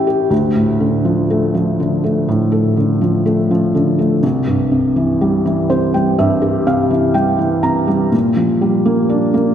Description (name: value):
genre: folk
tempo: 61 BPM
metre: 4/4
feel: straight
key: D minor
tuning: A4 = 439 Hz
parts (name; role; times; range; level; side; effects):
- felt-muted upright piano; solo; 0.0-9.5 s; C2 to Bb5; -13 LUFS; equal; none
room: wet scoring stage reverb, RT60 1.9 s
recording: heard from further back in the room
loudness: -13 LUFS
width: side -9 dB against mid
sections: 0.3-9.5 A section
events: none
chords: 0.3 Dm; 4.2 C; 8.1 Gm7/Bb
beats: | 0.31 1.30 2.28 3.26 | 4.24 5.22 6.19 7.16 | 8.13 9.11